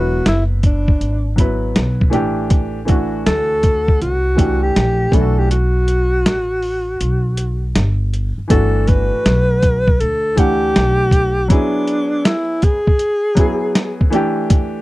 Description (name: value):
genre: hip hop, jazz-hop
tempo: 80 BPM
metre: 4/4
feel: swing 64% on 16ths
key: G major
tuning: A4 = 440 Hz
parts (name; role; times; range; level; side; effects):
- breathy alto saxophone; melody; 0.0-14.1 s; D4 to B4; -18 LUFS; equal; none
- warm baby grand piano; accompaniment; 0.0-14.8 s; E3 to F#5; -20 LUFS; equal; none
- upright bass; bass; 0.0-11.5 s; E1 to D2; -18 LUFS; equal; none
- boom bap sampler-style drum kit; drums; 0.3-14.7 s; hi-hat, kick drum, snare drum; -14 LUFS; equal; none
room: little or no reverb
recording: dry, close 1970s-style studio recording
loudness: -14 LUFS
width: side -18 dB against mid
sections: 0.0-8.5 A section; 8.5-14.8 B section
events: break 5.5-8.5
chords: 0.0 E7; 2.1 Am7; 5.1 Bm7; 7.8 N.C.; 8.5 Gmaj9; 11.5 E7; 14.1 A7(no3)